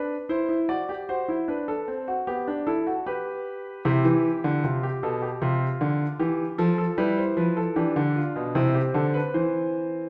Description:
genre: classical, baroque-style 3-part fugue for grand piano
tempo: 76 BPM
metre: 4/4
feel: straight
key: C major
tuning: A4 = 441 Hz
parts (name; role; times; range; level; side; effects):
- clear concert grand piano; solo; 0.0-10.1 s; B2 to D5; -26 LUFS; equal; none
room: wet stone room reverb, RT60 1.4 s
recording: heard from further back in the room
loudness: -25 LUFS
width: mono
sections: 0.0-10.1 A section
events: none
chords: 0.0 Am (rootless); 0.7 D7; 2.3 G/B; 3.8 C; 5.4 Dm7/C; 7.0 G7; 8.6 C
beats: | 0.69 1.48 2.27 3.06 | 3.85 4.63 5.42 6.20 | 6.98 7.76 8.55 9.34

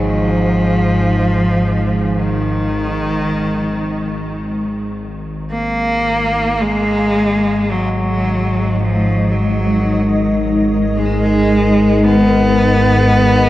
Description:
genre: dark ambient drone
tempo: free time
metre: none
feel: none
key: G# minor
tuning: A4 = 440 Hz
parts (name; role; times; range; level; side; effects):
- clear cello; melody; 0.0-13.5 s; D#3 to B3; -16 LUFS; equal; tape echo
- analog drone; drone; 0.0-13.5 s; G#1 to G#2; -17 LUFS; equal; chorus
- granular cloud pad; sustained chords; 8.0-13.5 s; G#3 to D#5; -18 LUFS; equal; built-in reverb
- wind-like tuned noise texture; texture; 10.2-13.5 s; G#3; -30 LUFS; left 1 dB; none
room: wet huge ambient reverb, RT60 7.9 s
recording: worn, warbling old tape, cassette tape, warbly pitch drift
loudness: -13 LUFS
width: side -15 dB against mid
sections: 0.0-6.6 A section; 6.6-13.5 B section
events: none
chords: 0.0 N.C.; 6.6 G#madd9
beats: free time

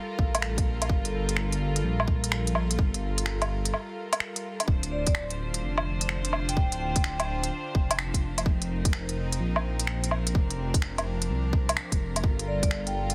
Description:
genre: future garage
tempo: 127 BPM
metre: 4/4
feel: swing 66% on 16ths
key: G minor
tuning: A4 = 439 Hz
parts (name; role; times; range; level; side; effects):
- warm studio string section; sustained chords; 0.0-13.1 s; D3 to C5; -37 LUFS; equal; sidechain pumping
- dark detuned saw bass; bass; 0.2-13.1 s; D1 to C2; -32 LUFS; equal; sidechain pumping
- electronic kick drum; drums; 0.2-12.7 s; none; -28 LUFS; equal; small room ambience
- organic electronic drum kit; drums; 0.3-13.1 s; finger snaps, hi-hat, woodblock; -32 LUFS; equal; small room ambience, soft clipping on snare
- vibraphone with medium mallets; melody; 4.9-7.5, 12.5-13.1 s; D5 to G5; -39 LUFS; equal; tape echo
room: digital ambience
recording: dense, heavily limited modern master, vinyl crackle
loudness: -28 LUFS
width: mono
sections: 0.0-4.7 A section; 4.7-13.1 A section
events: break 3.7-4.7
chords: 0.0 Gm9; 4.7 Dm7; 8.5 F7sus4; 12.2 Gm9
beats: 0.43 | 0.90 1.37 1.84 2.32 | 2.79 3.26 3.73 4.21 | 4.68 5.15 5.62 6.10 | 6.57 7.04 7.51 7.99 | 8.46 8.93 9.40 9.88 | 10.35 10.82 11.29 11.77 | 12.24 12.71

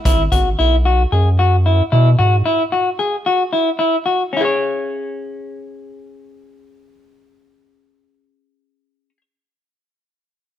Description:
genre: progressive instrumental, progressive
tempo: 224 BPM (eighths)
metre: 7/8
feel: straight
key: C# minor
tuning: A4 = 436 Hz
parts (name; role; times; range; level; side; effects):
- semi-hollow electric guitar; arpeggios; 0.1-9.2 s; C#4 to C#5; -17 LUFS; left 2 dB; none
- round analog bass; bass; 0.1-2.4 s; G#1 to B2; -14 LUFS; equal; none
room: light reverb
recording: rough rehearsal-room recording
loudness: -14 LUFS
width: side -11 dB against mid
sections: 0.0-4.3 A section; 4.3-8.1 B section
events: none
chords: 0.0 C#m (rootless); 0.6 Bsus4; 2.5 Eadd9; 4.3 C#5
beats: 0.05 0.32 | 0.59 0.85 1.12 1.39 1.66 1.92 2.19 | 2.46 2.72 2.99 3.26 3.53 3.79 4.06 | 4.33 4.59 4.86 5.13 5.40 5.67 5.93 | 6.20 6.47 6.74 7.00 7.27 7.54 7.81

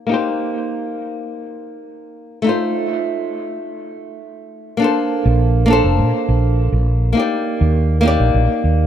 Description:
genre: sunset chillout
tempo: 102 BPM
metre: 4/4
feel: straight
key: unclear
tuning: A4 = 440 Hz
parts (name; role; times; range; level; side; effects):
- flamenco guitar; accompaniment; 0.0-8.9 s; A3 to D5; -18 LUFS; moving between left 4 dB and right 5 dB; auto-pan, low-pass filter, tape echo
- woody fretless electric bass; bass; 5.3-8.9 s; F1 to Bb2; -15 LUFS; right 1 dB; none
room: moderate plate reverb, RT60 3.7 s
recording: none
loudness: -15 LUFS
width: side -10 dB against mid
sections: 0.0-4.8 A section; 4.8-8.9 B section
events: none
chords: 0.1 Cm7; 2.5 F7; 4.8 Bbmaj9; 7.2 Ebmaj7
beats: | 0.10 0.69 1.28 1.87 | 2.46 3.04 3.63 4.22 | 4.81 5.40 5.99 6.58 | 7.16 7.75 8.34

